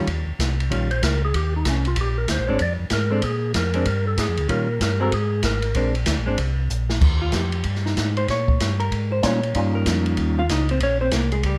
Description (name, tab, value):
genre	soul jazz organ trio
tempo	190 BPM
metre	4/4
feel	swing 62% on 8ths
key	Eb mixolydian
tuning	A4 = 441 Hz
part	hollow-body jazz guitar	accompaniment	0.0-11.6 s	Eb3 to F5	-28 LUFS	equal	none
part	tonewheel organ	bass	0.1-11.6 s	Ab1 to Bb2	-25 LUFS	equal	none
part	open jazz drum kit	drums	0.1-11.5 s	crash cymbal, hi-hat, kick drum, ride cymbal, snare drum	-27 LUFS	equal	none
part	percussive tonewheel organ	melody	0.9-5.9, 9.2-10.4 s	G3 to D5	-28 LUFS	equal	fast rotary speaker
room	light reverb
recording	none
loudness	-22 LUFS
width	mono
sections	0.0-7.0 A section; 7.0-11.6 A section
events	tonewheel organ solo 0.0-7.0; drum fill 6.7-7.0; hollow-body jazz guitar solo 7.0-11.6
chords	0.0 Eb7(no3); 2.0 Bb9; 4.5 Eb9; 5.1 Absus2; 5.8 Bb9; 7.0 Eb9